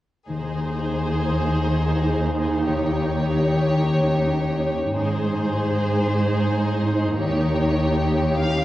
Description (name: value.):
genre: classical, slow romantic movement for symphony orchestra.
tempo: 70-83 BPM.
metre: 3/4.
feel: rubato.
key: Ab major.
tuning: A4 = 440 Hz.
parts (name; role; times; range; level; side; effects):
warm studio violin section; melody; 0.3-8.6 s; C5 to F5; -28 LUFS; equal; none.
rich studio violin section; second line; 0.3-8.6 s; G4 to Ab4; -29 LUFS; left 2 dB; none.
rich studio viola section; accompaniment; 0.3-8.6 s; Eb4; -28 LUFS; right 1 dB; none.
concert harp; arpeggios; 0.3-8.6 s; Ab2 to C5; -26 LUFS; left 3 dB; none.
warm studio cello section; bass; 0.3-8.6 s; Eb2 to Ab2; -23 LUFS; right 1 dB; none.
room: wet scoring stage reverb, RT60 1.6 s.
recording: worn, warbling old tape, cassette tape, warbly pitch drift.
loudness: -19 LUFS.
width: side -14 dB against mid.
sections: 0.3-8.6 A section.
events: none.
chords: 0.3 Ab/Eb; 2.7 Eb7; 4.9 Ab; 7.2 Eb7.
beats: | 0.28 1.09 1.85 | 2.66 3.45 4.21 | 4.95 5.69 6.41 | 7.17 7.95.